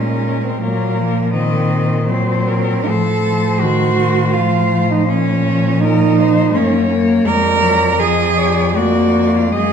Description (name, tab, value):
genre	classical, lyrical piece for cello ensemble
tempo	81 BPM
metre	3/4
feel	uneven beats, rubato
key	Bb minor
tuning	A4 = 436 Hz
part	rich cello	melody	0.0-9.7 s	Bb4 to Eb5	-22 LUFS	left 8 dB	none
part	rich cello	second line	0.0-9.7 s	Bb3 to Bb4	-17 LUFS	right 6 dB	none
part	rich cello	accompaniment	0.0-9.7 s	Eb3 to Bb3	-18 LUFS	left 4 dB	none
part	rich cello	bass	0.0-9.7 s	F2 to Bb2	-19 LUFS	right 1 dB	none
room	wet recital hall reverb, RT60 1.4 s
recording	dark, warm production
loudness	-13 LUFS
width	side -7 dB against mid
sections	0.0-9.7 A section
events	none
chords	0.0 Bbm; 0.6 Ebm/Bb; 2.9 F7/A; 5.1 Bbm; 7.3 Bb7/F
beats	| 0.60 1.33 2.07 | 2.88 3.61 4.35 | 5.09 5.82 6.55 | 7.26 8.00 8.76 | 9.52